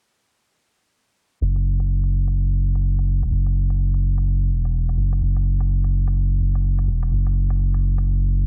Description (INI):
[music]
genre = future garage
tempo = 126 BPM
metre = 4/4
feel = swing 66% on 16ths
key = unclear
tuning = A4 = 441 Hz
[part]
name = soft dub sub bass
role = bass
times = 1.4-8.5 s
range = E1 to F#1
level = -21 LUFS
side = equal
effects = tube saturation
[part]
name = electronic hi-hat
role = drums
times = 1.6-8.1 s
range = none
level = -55 LUFS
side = equal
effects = overdrive
[sound]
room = little or no reverb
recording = heavily compressed radio sound, multiband compression, low-pass filter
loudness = -21 LUFS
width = mono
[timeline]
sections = 1.4-8.5 A section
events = filter sweep 1.4-8.5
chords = none